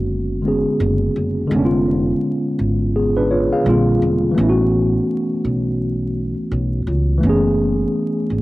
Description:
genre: lo-fi hip hop.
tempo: 84 BPM.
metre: 4/4.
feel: swing 60% on 16ths.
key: unclear.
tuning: A4 = 440 Hz.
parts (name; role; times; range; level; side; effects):
tine electric piano; accompaniment; 0.0-8.4 s; C#3 to E#5; -17 LUFS; equal; medium stereo tremolo, cassette tape.
upright bass; bass; 0.0-8.4 s; E1 to C#2; -20 LUFS; equal; transformer saturation.
room: moderate lush hall reverb, RT60 2.5 s.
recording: home recording on cassette, vinyl crackle.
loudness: -16 LUFS.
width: side -18 dB against mid.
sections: 0.0-8.4 A section.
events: none.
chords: 0.0 E13 (rootless); 1.5 C#7b9/E#; 3.7 A#69; 4.4 A69; 7.2 F#m11.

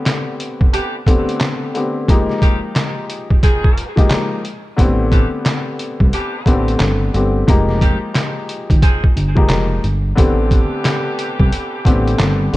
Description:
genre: hip hop, boom-bap hip-hop.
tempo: 89 BPM.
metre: 4/4.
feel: swing 61% on 16ths.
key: A minor.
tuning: A4 = 440 Hz.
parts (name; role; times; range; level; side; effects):
dark grand piano; accompaniment; 0.0-12.6 s; D3 to G4; -20 LUFS; left 2 dB; cassette tape, high-pass filter, low-pass filter.
trip hop sampler-style drum kit; drums; 0.1-12.6 s; handclaps, hi-hat, kick drum, snare drum; -15 LUFS; equal; vintage 12-bit sampler grit.
bright saxophone section; stabs; 0.7-12.5 s; Eb3 to Ab4; -26 LUFS; right 1 dB; high-pass filter, low-pass filter, tape echo.
fat analog bass; bass; 4.8-12.6 s; F1 to C2; -17 LUFS; equal; none.
room: little or no reverb.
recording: dark, warm production.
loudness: -13 LUFS.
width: side -17 dB against mid.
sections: 0.0-10.2 A section; 10.2-12.6 A section.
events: break 0.0-4.8.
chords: 0.0 Am11; 2.1 Fm11; 4.8 Am11; 7.5 Fm11; 10.2 Am11.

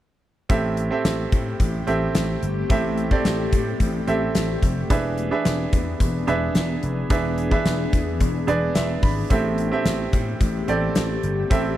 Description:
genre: 1980s-style pop.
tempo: 109 BPM.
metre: 4/4.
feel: straight.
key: A minor.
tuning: A4 = 440 Hz.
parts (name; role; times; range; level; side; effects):
bright baby grand piano; accompaniment; 0.5-11.8 s; A2 to B5; -24 LUFS; right 4 dB; none.
shimmering ambient pad; sustained chords; 1.3-11.8 s; E3 to G#4; -30 LUFS; left 4 dB; chorus, built-in reverb.
vintage slap bass; bass; 0.5-11.8 s; E1 to A2; -26 LUFS; equal; none.
gated 80s drum kit; drums; 0.5-11.6 s; hi-hat, kick drum, snare drum; -23 LUFS; left 1 dB; none.
room: little or no reverb.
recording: none.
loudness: -20 LUFS.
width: side -13 dB against mid.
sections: 0.5-11.8 A section.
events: grand piano fill 8.5-9.3.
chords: 0.5 Am7; 4.9 E7; 9.3 Am7.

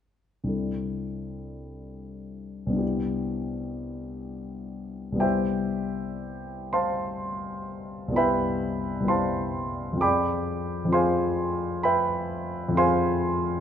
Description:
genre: classical, impressionist solo piano.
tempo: 54-69 BPM.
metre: 5/4.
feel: rubato.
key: C major.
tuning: A4 = 441 Hz.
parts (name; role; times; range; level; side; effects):
warm grand piano; solo; 0.4-13.6 s; C2 to D6; -25 LUFS; equal; none.
room: moderate recital hall reverb, RT60 1.4 s.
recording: nothing above 11.0 kHz.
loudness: -24 LUFS.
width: side -9 dB against mid.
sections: 0.5-5.2 A section; 5.2-13.6 B section.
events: none.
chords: 0.5 C69; 2.8 Em7/C; 5.2 Cmaj7; 10.0 Fm6.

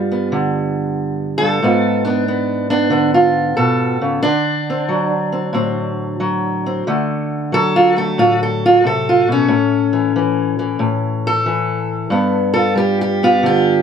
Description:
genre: acoustic country blues, solo or duo.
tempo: 91 BPM.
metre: 4/4.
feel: swing 68% on 8ths.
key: unclear.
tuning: A4 = 445 Hz.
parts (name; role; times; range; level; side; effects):
fingerpicked steel-string acoustic guitar; solo; 0.0-13.8 s; G2 to A4; -14 LUFS; equal; none.
room: light reverb.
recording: none.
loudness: -14 LUFS.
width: side -7 dB against mid.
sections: 0.0-13.8 A section.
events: none.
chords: 0.0 G7; 1.6 G#dim7; 4.2 D7; 9.5 A; 12.1 G7.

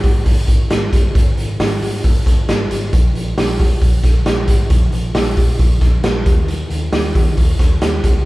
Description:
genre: jangly indie pop.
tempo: 135 BPM.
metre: 4/4.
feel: straight.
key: unclear.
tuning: A4 = 440 Hz.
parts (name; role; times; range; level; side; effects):
vintage muted fingered electric bass; bass; 0.0-8.2 s; G1 to Eb3; -21 LUFS; equal; none.
raw garage drum kit; drums; 0.0-8.1 s; hi-hat, kick drum, snare drum; -13 LUFS; equal; none.
room: light reverb.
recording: band playing live in one room.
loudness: -13 LUFS.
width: side -19 dB against mid.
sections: 0.0-8.3 A section.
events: none.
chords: none.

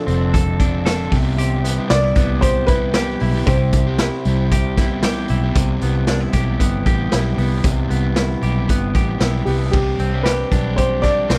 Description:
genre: jangly indie pop.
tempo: 115 BPM.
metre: 4/4.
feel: straight.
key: C major.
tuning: A4 = 439 Hz.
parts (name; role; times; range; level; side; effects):
warm upright piano; melody; 0.0-5.0, 9.5-11.4 s; G4 to D5; -25 LUFS; equal; slapback echo.
crunchy overdriven guitar; accompaniment; 0.0-11.4 s; C3 to A4; -26 LUFS; equal; none.
direct-recorded clean electric guitar; arpeggios; 0.0-11.4 s; C3 to A4; -28 LUFS; equal; subtle chorus.
vintage muted fingered electric bass; bass; 0.1-11.4 s; F1 to C2; -23 LUFS; equal; none.
raw garage drum kit; drums; 0.1-11.4 s; crash cymbal, hi-hat, kick drum, snare drum; -22 LUFS; equal; none.
room: little or no reverb.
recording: none.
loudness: -18 LUFS.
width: mono.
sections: 0.0-5.6 A section; 5.6-9.7 B section; 9.7-11.4 C section.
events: none.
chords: 0.0 F6; 1.1 Cmaj7; 9.7 Csus2.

